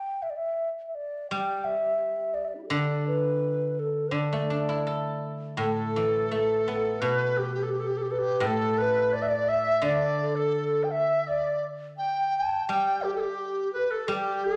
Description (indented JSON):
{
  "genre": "chinese traditional, Chinese chamber ensemble",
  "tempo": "85 BPM",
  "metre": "2/4",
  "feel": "rubato",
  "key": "D zhi mode",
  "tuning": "A4 = 440 Hz",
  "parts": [
    { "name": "mellow xiao", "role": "melody", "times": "0.0-14.6 s", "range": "D4 to A5", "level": "-31 LUFS", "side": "equal", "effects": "none" },
    { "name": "guzheng", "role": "accompaniment", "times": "1.3-14.6 s", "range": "A2 to A4", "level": "-32 LUFS", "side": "equal", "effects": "none" },
    { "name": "bright reedy large dizi", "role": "second line", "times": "5.6-14.6 s", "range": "G4 to G5", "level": "-30 LUFS", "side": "equal", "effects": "none" }
  ],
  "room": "moderate recital hall reverb, RT60 1.6 s",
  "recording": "none",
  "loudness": "-27 LUFS",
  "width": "mono",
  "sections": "0.0-5.6 A section; 5.6-14.6 B section",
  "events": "none",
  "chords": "none",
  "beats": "0.62 | 1.32 2.03 | 2.73 3.43 | 4.15 4.87 | 5.60 6.31 | 7.02 7.73 | 8.44 9.13 | 9.84 10.55 | 11.28 11.99 | 12.70 13.39 | 14.08"
}